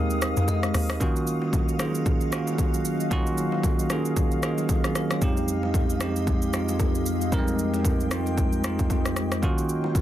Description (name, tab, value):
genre	amapiano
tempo	114 BPM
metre	4/4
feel	swing 58% on 16ths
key	unclear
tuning	A4 = 444 Hz
part	bell-like tine electric piano	accompaniment	0.0-10.0 s	F2 to Eb5	-26 LUFS	right 2 dB	none
part	glassy FM pad	sustained chords	0.0-10.0 s	Gb3 to Eb6	-32 LUFS	left 3 dB	ensemble chorus, built-in reverb
part	tight log drum bass	bass	0.0-1.0 s	Eb2 to F2	-25 LUFS	equal	none
part	deep house drum kit	drums	0.1-10.0 s	hi-hat, kick drum, rim click, shaker	-26 LUFS	equal	soft clipping on snare
part	bongos and congas	percussion	0.4-10.0 s	none	-38 LUFS	left 3 dB	none
room	little or no reverb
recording	dense, heavily limited modern master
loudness	-22 LUFS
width	side -12 dB against mid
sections	0.0-1.0 A section; 1.0-10.0 B section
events	break 0.0-1.0; drop 0.0-1.0; tine electric piano fill 0.2-1.0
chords	0.0 Fm9; 1.0 Ebm9; 5.2 Fm9; 9.4 Ebm9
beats	0.48 | 1.01 1.53 2.06 2.58 | 3.11 3.64 4.16 4.69 | 5.22 5.74 6.27 6.79 | 7.32 7.85 8.37 8.90 | 9.43 9.95